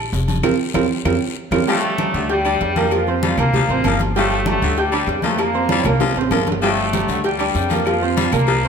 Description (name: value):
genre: latin, salsa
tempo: 194 BPM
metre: 4/4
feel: straight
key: G minor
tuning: A4 = 437 Hz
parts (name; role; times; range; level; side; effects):
- upright bass; bass; 0.0-8.7 s; F1 to F2; -23 LUFS; equal; none
- congas; percussion; 0.1-8.7 s; none; -26 LUFS; left 2 dB; none
- cowbell and bongos; percussion; 0.1-8.6 s; none; -26 LUFS; left 4 dB; none
- guiro; percussion; 0.1-1.6, 6.6-8.7 s; none; -34 LUFS; left 10 dB; none
- timbales and agogo bells; percussion; 0.1-8.7 s; none; -29 LUFS; right 5 dB; none
- bright concert grand piano; accompaniment; 0.4-8.7 s; G3 to G6; -21 LUFS; right 7 dB; none
- claves; percussion; 0.4-8.5 s; none; -33 LUFS; left 5 dB; none
- brilliant trombone section; melody; 1.7-8.7 s; G2 to F4; -22 LUFS; left 1 dB; none
- raspy baritone saxophone; second line; 1.7-8.6 s; D3 to G3; -24 LUFS; left 7 dB; none
room: wet large studio reverb, RT60 1.4 s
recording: none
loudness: -16 LUFS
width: side -6 dB against mid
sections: 0.0-1.7 A section; 1.7-8.7 B section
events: grand piano solo 0.0-1.7; drum fill 0.4-1.7, 5.7-6.6; band accent 0.4-1.7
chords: 0.4 Fsus4; 1.7 Gm7; 2.9 Fsus4; 4.2 Gm7; 5.4 Fsus4; 6.6 Gm7; 7.9 Fsus4